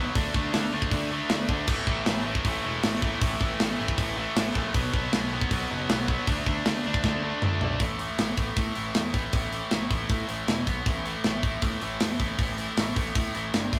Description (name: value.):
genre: punk rock.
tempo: 157 BPM.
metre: 4/4.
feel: straight.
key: unclear.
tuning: A4 = 441 Hz.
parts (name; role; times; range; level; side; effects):
distorted electric guitar; riff; 0.0-13.8 s; E2 to D4; -33 LUFS; equal; distortion.
high-gain distorted guitar; riff; 0.0-7.8 s; A2 to D4; -39 LUFS; equal; none.
tight distorted guitar; riff; 0.0-7.8 s; A2 to D4; -36 LUFS; equal; distortion.
growling picked electric bass; bass; 0.0-13.8 s; E1 to A2; -38 LUFS; equal; overdrive.
tight metal drum kit; drums; 0.2-13.8 s; crash cymbal, hi-hat, kick drum, snare drum, toms; -30 LUFS; equal; none.
room: light reverb.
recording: rough rehearsal-room recording.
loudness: -27 LUFS.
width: mono.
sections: 0.0-7.8 A section; 7.8-13.8 B section.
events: drum fill 7.0-7.8.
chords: 0.2 D5; 1.7 A5; 4.7 B5; 6.3 D5; 7.8 A5; 10.5 E5; 10.7 B5; 10.9 A5; 13.5 G5.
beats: | 0.16 0.54 0.92 1.30 | 1.69 2.07 2.45 2.83 | 3.22 3.60 3.98 4.36 | 4.75 5.13 5.51 5.89 | 6.28 6.66 7.04 7.42 | 7.81 8.19 8.57 8.95 | 9.34 9.72 10.10 10.48 | 10.87 11.25 11.63 12.01 | 12.40 12.78 13.16 13.54.